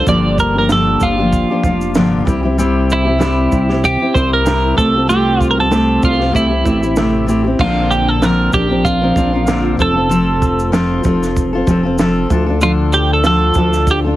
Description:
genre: acoustic pop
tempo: 96 BPM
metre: 4/4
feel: swing 55% on 16ths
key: F major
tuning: A4 = 441 Hz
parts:
  - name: twelve-string electric guitar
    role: melody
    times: 0.0-14.0 s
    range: E4 to D5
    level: -16 LUFS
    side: right 2 dB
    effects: none
  - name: fingerpicked steel-string acoustic guitar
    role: accompaniment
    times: 0.0-14.2 s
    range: G2 to Bb4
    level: -15 LUFS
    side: left 1 dB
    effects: none
  - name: chorused synth bass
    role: bass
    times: 0.0-14.1 s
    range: F1 to D2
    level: -18 LUFS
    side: equal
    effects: none
  - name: compact cocktail drum kit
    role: drums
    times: 0.1-14.0 s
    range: crash cymbal, kick drum, shaker, snare drum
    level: -20 LUFS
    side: right 2 dB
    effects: none
room: little or no reverb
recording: heavily compressed radio sound, multiband compression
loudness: -12 LUFS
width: side -15 dB against mid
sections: 0.0-7.6 A section; 7.6-14.2 B section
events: none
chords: 0.1 Gm7; 2.3 C; 4.8 Fadd9/C; 6.3 C6; 7.6 Bbadd9; 9.8 F; 12.3 Dm

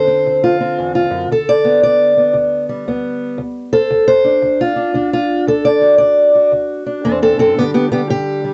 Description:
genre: acoustic country blues, solo or duo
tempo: 115 BPM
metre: 4/4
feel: swing 64% on 8ths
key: unclear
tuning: A4 = 440 Hz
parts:
  - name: fingerpicked steel-string acoustic guitar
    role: solo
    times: 0.0-8.5 s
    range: D2 to D5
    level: -14 LUFS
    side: equal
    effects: none
room: moderate booth ambience, RT60 0.2 s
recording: dark, warm production, nothing above 8.0 kHz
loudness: -14 LUFS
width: mono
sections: 0.0-8.5 A section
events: steel-string acoustic guitar solo 0.0-8.5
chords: 0.0 D7; 1.3 G; 3.4 D7; 7.6 G

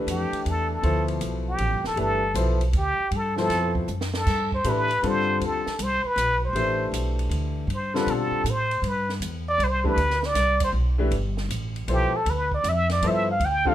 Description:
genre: modal jazz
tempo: 158 BPM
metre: 3/4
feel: swing 66% on 8ths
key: D dorian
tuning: A4 = 439 Hz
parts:
  - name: clear upright piano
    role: accompaniment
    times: 0.0-13.7 s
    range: B2 to C5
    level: -28 LUFS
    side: left 3 dB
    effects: none
  - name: upright bass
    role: bass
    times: 0.0-13.7 s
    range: D1 to B2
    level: -26 LUFS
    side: equal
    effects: none
  - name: trumpet with plunger mute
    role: melody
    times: 0.1-13.7 s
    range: G4 to G5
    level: -24 LUFS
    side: equal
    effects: none
  - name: compact cocktail drum kit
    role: drums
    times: 0.1-13.7 s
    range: crash cymbal, hi-hat, kick drum, ride cymbal, snare drum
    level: -34 LUFS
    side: right 2 dB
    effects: none
room: light reverb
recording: minimal, uncompressed stereo recording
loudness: -22 LUFS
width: side -12 dB against mid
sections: 0.0-13.7 A section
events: muted trumpet solo 0.0-13.7; drum fill 3.9-4.3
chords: 0.0 D13sus4

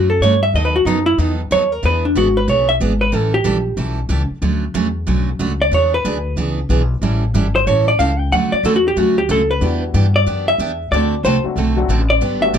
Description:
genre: country, western swing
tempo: 185 BPM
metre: 4/4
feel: swing 64% on 8ths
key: D major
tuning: A4 = 441 Hz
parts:
  - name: vintage hollow-body jazz guitar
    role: melody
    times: 0.0-12.6 s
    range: D4 to G5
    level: -16 LUFS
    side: equal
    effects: none
  - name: picked steel-string acoustic guitar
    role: accompaniment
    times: 0.0-12.6 s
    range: D3 to A4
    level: -21 LUFS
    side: right 5 dB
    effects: none
  - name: upright bass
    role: bass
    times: 0.0-12.6 s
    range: G1 to G2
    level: -18 LUFS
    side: left 1 dB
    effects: none
  - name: dark upright piano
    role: accompaniment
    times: 9.6-12.5 s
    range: F#3 to F#4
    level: -24 LUFS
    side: left 6 dB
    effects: none
room: moderate club reverb, RT60 0.5 s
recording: none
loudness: -14 LUFS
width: side -8 dB against mid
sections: 0.0-12.6 A section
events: hollow-body jazz guitar solo 0.0-12.6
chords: 0.0 Dmaj7; 0.5 B7/D#; 1.8 E7; 3.1 A9; 4.4 Dmaj9; 5.7 E7; 7.0 A7; 8.3 Dmaj7; 9.6 Em9; 10.9 D7

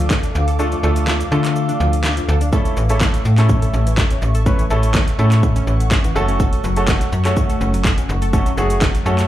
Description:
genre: dance-pop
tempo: 124 BPM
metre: 4/4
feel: straight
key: A major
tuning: A4 = 440 Hz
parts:
  - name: clear baby grand piano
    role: accompaniment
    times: 0.0-9.3 s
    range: A3 to B4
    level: -22 LUFS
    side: right 1 dB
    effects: sidechain pumping, slapback echo
  - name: ethereal airy pad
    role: sustained chords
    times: 0.0-9.3 s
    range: A3 to D6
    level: -27 LUFS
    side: equal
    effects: ensemble chorus, built-in reverb, sidechain pumping
  - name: analog pluck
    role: arpeggios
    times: 0.0-9.2 s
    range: E3 to A4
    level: -27 LUFS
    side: left 2 dB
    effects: chorus, sidechain pumping, tape echo, slapback echo
  - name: slap-like FM bass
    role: bass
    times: 0.0-9.3 s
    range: F#1 to D3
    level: -17 LUFS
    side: equal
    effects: sidechain pumping
  - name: pop drum kit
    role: drums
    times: 0.0-9.3 s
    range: handclaps, hi-hat, kick drum, shaker, snare drum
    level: -18 LUFS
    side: equal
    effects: overdrive
room: little or no reverb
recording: live gig heard through the venue's PA, club reverb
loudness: -14 LUFS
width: side -13 dB against mid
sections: 0.0-9.3 A section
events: kick muted 0.6-2.5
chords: 0.0 Dm; 2.5 A; 6.2 F#m

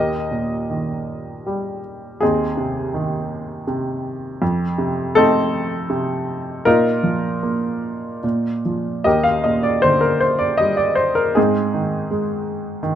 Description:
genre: classical, lyrical solo piano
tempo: 72-84 BPM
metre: 3/4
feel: rubato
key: Eb major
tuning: A4 = 440 Hz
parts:
  - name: clear upright piano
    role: solo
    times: 0.0-13.0 s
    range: Eb2 to F5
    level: -18 LUFS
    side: equal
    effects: none
room: light reverb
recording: close, detailed microphones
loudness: -17 LUFS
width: side -10 dB against mid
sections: 0.0-13.0 A section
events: none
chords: 0.0 Eb; 2.2 Ab/Eb; 4.4 F7; 6.7 Bbsus4; 9.1 Ebmaj7; 11.4 Ab

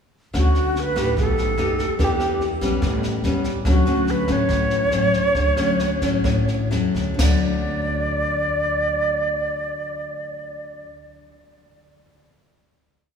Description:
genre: bossa nova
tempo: 123-145 BPM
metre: 4/4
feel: straight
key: D major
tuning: A4 = 439 Hz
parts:
  - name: nylon-string guitar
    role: accompaniment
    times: 0.3-10.9 s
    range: A2 to G4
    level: -24 LUFS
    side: left 2 dB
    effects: none
  - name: upright bass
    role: bass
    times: 0.3-10.8 s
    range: A1 to F#2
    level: -24 LUFS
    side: equal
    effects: none
  - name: jazz brush drum kit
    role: drums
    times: 0.3-7.3 s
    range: crash cymbal, kick drum, rim click, snare drum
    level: -28 LUFS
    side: equal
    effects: none
  - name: bright reedy alto flute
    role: melody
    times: 0.4-10.9 s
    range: F#4 to D5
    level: -23 LUFS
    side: right 1 dB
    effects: none
room: wet church reverb, RT60 3.1 s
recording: recorded in a church or concert hall, small room ambience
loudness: -18 LUFS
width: side -7 dB against mid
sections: 0.3-7.2 A section; 7.2-11.1 final chord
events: slowing down 3.7-7.2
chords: 0.3 Dmaj7; 1.2 B7b13; 2.0 Em7; 2.8 A9; 3.7 Dmaj7; 7.2 D

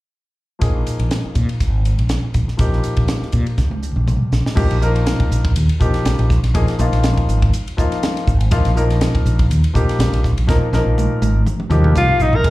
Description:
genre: electric jazz fusion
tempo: 122 BPM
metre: 4/4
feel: swing 54% on 16ths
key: unclear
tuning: A4 = 440 Hz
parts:
  - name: clear baby grand piano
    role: accompaniment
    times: 0.6-12.5 s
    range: F3 to Bb4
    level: -23 LUFS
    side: left 2 dB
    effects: slapback echo
  - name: mellow fretless electric bass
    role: bass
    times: 0.6-12.5 s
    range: Ab1 to Bb2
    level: -16 LUFS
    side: equal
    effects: none
  - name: crisp fusion drum kit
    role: drums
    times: 0.6-12.5 s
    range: crash cymbal, hi-hat, kick drum, ride cymbal, snare drum, toms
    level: -20 LUFS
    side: equal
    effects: none
  - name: breathy alto saxophone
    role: melody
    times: 12.0-12.5 s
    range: Eb4 to Bb4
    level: -15 LUFS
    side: left 1 dB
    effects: slapback echo
  - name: bright silver concert flute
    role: second line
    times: 12.0-12.5 s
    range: Eb5 to Bb5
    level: -24 LUFS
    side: right 2 dB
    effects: slapback echo
room: little or no reverb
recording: live gig heard through the venue's PA, club reverb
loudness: -14 LUFS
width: side -18 dB against mid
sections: 0.6-4.6 A section; 4.6-12.4 B section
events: drum fill 3.6-4.6, 10.5-12.4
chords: 0.6 Bb5; 2.6 Eb9/Bb; 4.6 Bbsus4

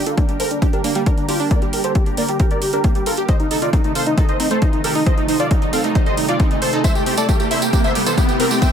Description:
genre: uplifting trance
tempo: 135 BPM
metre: 4/4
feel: straight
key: G minor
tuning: A4 = 438 Hz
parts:
  - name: big supersaw lead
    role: melody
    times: 0.0-8.7 s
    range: Bb3 to G5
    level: -22 LUFS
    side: right 1 dB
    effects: sidechain pumping, low-pass filter, dub echo
  - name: plucky unison lead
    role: second line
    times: 0.0-8.7 s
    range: D4 to G5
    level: -25 LUFS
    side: left 1 dB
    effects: lush chorus, sidechain pumping, dub echo
  - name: analog string pad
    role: sustained chords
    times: 0.0-8.7 s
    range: C3 to Bb4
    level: -26 LUFS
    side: right 1 dB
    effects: ensemble chorus, sidechain pumping
  - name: riser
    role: sound effects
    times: 1.9-8.7 s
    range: none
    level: -27 LUFS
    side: equal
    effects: none
  - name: analog pluck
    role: arpeggios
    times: 0.1-8.7 s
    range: E3 to C5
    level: -26 LUFS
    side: right 2 dB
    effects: chorus, sidechain pumping, dub echo
  - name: electronic hi-hat and tambourine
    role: drums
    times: 0.1-8.7 s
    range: none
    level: -26 LUFS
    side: right 3 dB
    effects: sidechain pumping on hats, sidechain pumping on perc
  - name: electronic kick drum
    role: drums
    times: 0.2-8.7 s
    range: none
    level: -17 LUFS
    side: left 1 dB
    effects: none
room: little or no reverb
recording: none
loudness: -15 LUFS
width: side -8 dB against mid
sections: 0.0-8.7 A section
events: build-up 0.0-8.7; filter sweep on supersaw synth 0.0-8.7; filter sweep on digital synth lead 0.0-8.7; riser 1.9-8.7; drum fill 6.8-8.7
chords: 0.0 Gm; 3.3 Adim; 6.8 C6

